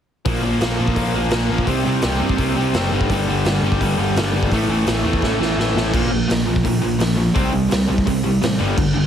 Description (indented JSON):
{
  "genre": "punk rock",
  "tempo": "169 BPM",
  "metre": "4/4",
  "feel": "straight",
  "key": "C major",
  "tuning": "A4 = 440 Hz",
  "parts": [
    { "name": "distorted electric guitar", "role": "riff", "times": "0.3-9.1 s", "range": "G2 to C4", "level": "-22 LUFS", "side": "left 9 dB", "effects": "distortion" },
    { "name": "distorted electric guitar", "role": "riff", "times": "0.3-9.1 s", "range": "G2 to C4", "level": "-22 LUFS", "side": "right 9 dB", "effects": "distortion" },
    { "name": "picked electric bass", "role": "bass", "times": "0.3-9.1 s", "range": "F#1 to G2", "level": "-23 LUFS", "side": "equal", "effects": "none" },
    { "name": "raw garage drum kit", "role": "drums", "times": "0.3-8.9 s", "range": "crash cymbal, hi-hat, kick drum, snare drum", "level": "-22 LUFS", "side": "equal", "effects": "none" }
  ],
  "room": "little or no reverb",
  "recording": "heavily compressed radio sound",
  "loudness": "-16 LUFS",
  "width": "side -9 dB against mid",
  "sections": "0.3-5.9 A section; 5.9-9.1 B section",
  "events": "drum fill 5.2-5.9",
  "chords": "0.3 Bb5; 1.7 C5; 2.9 G5; 4.5 A5; 5.9 Bb5; 7.4 C5"
}